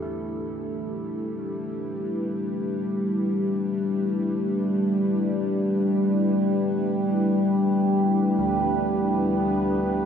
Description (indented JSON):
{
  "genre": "dark ambient drone",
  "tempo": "free time",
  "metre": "none",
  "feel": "none",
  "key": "unclear",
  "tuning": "A4 = 440 Hz",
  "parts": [
    { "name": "dark analog pad", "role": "sustained chords", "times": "0.0-10.1 s", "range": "A3 to B4", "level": "-27 LUFS", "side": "equal", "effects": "chorus" },
    { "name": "old church bells", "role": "arpeggios", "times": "0.0-10.1 s", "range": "D3 to E4", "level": "-40 LUFS", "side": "right 2 dB", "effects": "tape echo" },
    { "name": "overtone-sweeping drone", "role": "drone", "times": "0.0-10.1 s", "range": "E2 to G3", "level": "-24 LUFS", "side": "left 1 dB", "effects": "chorus, built-in reverb" },
    { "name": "bubbling stepped-filter texture", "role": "texture", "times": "2.1-10.1 s", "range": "B3 to B4", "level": "-42 LUFS", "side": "equal", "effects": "chorus, built-in reverb" }
  ],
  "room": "moderate huge ambient reverb, RT60 8.2 s",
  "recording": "dark, warm production",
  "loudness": "-22 LUFS",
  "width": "side -8 dB against mid",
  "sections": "0.0-10.1 A section",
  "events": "fade-in on synth texture 0.0-10.1; fade-in on church bells 0.0-10.1",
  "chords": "0.0 Em"
}